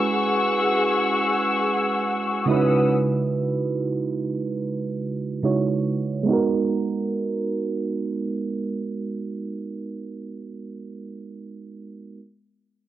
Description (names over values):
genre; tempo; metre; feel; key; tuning
R&B; free time; none; none; G# minor; A4 = 440 Hz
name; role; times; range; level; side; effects
FM electric piano with auto-pan; accompaniment; 0.0-12.2 s; C#3 to C#5; -24 LUFS; right 4 dB; cassette tape
warm studio string section; sustained chords; 0.0-2.9 s; C#4 to E6; -22 LUFS; left 2 dB; cassette tape
room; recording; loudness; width
moderate spring reverb, RT60 2.4 s; home recording on cassette, low-pass filter; -21 LUFS; side -13 dB against mid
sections
0.0-6.3 A section; 6.3-9.7 B section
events
filter sweep 0.0-6.3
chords
0.0 E69; 2.5 C#m11; 6.3 G#m7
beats
free time